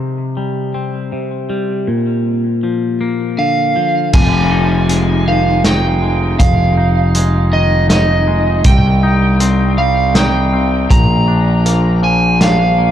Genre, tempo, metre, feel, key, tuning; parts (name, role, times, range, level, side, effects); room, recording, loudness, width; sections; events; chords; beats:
post-rock; 80 BPM; 3/4; straight; F dorian; A4 = 441 Hz
twangy electric guitar; arpeggios; 0.0-12.9 s; F2 to Eb4; -17 LUFS; left 3 dB; phaser, tape echo
overdriven slide guitar; melody; 3.4-12.9 s; Eb5 to Bb5; -16 LUFS; right 3 dB; tape echo
fuzz picked electric bass; bass; 4.1-12.9 s; F1 to C2; -14 LUFS; equal; overdrive
loose indie drum kit; drums; 4.1-12.6 s; crash cymbal, hi-hat, kick drum, snare drum; -15 LUFS; equal
studio reverb; dark, warm production; -11 LUFS; side -10 dB against mid
0.0-4.1 A section; 4.1-12.9 B section
0.0 C5; 1.9 Bb; 4.1 Fm7; 8.7 Cm; 10.9 Bb
0.37 1.12 | 1.88 2.63 3.39 | 4.14 4.89 5.64 | 6.40 7.15 7.90 | 8.65 9.40 10.16 | 10.91 11.66 12.41